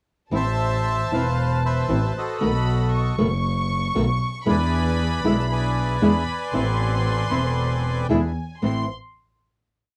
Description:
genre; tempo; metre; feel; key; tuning
tango; 116 BPM; 4/4; rubato; A harmonic minor; A4 = 440 Hz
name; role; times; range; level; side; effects
bandoneon; melody; 0.3-8.9 s; F#4 to C6; -29 LUFS; equal; none
warm studio violin section; second line; 0.3-8.9 s; G5 to C#6; -33 LUFS; equal; none
nylon-string guitar; accompaniment; 0.3-8.8 s; A2 to F#4; -24 LUFS; equal; none
warm double bass; bass; 0.3-8.8 s; E1 to E2; -26 LUFS; equal; none
bandoneon; stabs; 4.5-8.8 s; B3 to B4; -34 LUFS; equal; none
room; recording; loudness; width
little or no reverb; dry, close 1970s-style studio recording; -22 LUFS; mono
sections
0.3-8.6 A section; 8.6-10.0 final chord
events
none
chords
0.3 Amadd9; 2.4 B7; 4.5 E7; 6.5 Amadd9; 8.1 E7; 8.6 Amadd9

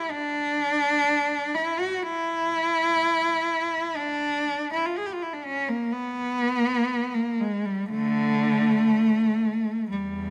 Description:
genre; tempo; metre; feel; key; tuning
classical, free, expressive piece for unaccompanied cello; 61 BPM; 4/4; rubato; unclear; A4 = 440 Hz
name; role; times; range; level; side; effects
rich cello; solo; 0.0-10.3 s; E2 to G#4; -25 LUFS; equal; none
room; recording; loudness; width
light reverb; close, detailed microphones; -25 LUFS; mono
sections
0.0-10.3 A section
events
none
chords
none

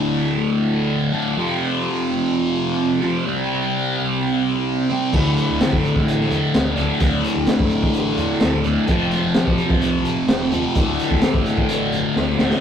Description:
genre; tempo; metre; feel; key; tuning
psychedelic rock; 128 BPM; 4/4; straight; unclear; A4 = 436 Hz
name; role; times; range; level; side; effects
thick fuzz guitar; riff; 0.0-12.6 s; D2 to C4; -18 LUFS; equal; distortion, phaser
mellow tonewheel organ; sustained chords; 5.1-12.6 s; E3 to F#4; -33 LUFS; right 3 dB; none
hollow-body short-scale fingered electric bass; bass; 5.1-12.5 s; D1 to F#2; -28 LUFS; equal; none
crunchy breakbeat drum kit; drums; 5.1-12.6 s; crash cymbal, hi-hat, kick drum, snare drum; -20 LUFS; equal; none
room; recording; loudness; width
wet small room reverb, RT60 0.5 s; rough rehearsal-room recording, tube saturation; -17 LUFS; side -8 dB against mid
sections
0.0-12.6 A section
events
drum fill 12.2-12.6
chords
0.0 D5; 1.4 F5; 3.2 C5; 5.1 Dsus2; 8.9 F; 10.8 D

